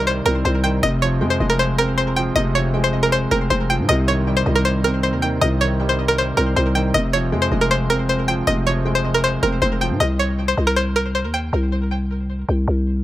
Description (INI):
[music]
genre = hip hop, trap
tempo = 157 BPM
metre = 4/4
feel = half-time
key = unclear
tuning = A4 = 440 Hz
[part]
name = string-like resonator pluck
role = melody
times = 0.0-11.5 s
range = Bb4 to G5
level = -20 LUFS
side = equal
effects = chorus, tape echo
[part]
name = dark baby grand piano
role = accompaniment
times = 0.0-10.0 s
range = C3 to C4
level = -23 LUFS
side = equal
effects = tape echo
[part]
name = growling 808-style bass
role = bass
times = 0.0-13.0 s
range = F1 to Ab2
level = -21 LUFS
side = equal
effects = none
[sound]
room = light reverb, small room ambience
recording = echo-heavy mix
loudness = -16 LUFS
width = side -14 dB against mid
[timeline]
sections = 0.0-10.0 A section; 10.0-13.0 B section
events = none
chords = 0.0 Cm; 0.8 Fm; 3.9 Cm; 6.9 Fm; 10.0 N.C.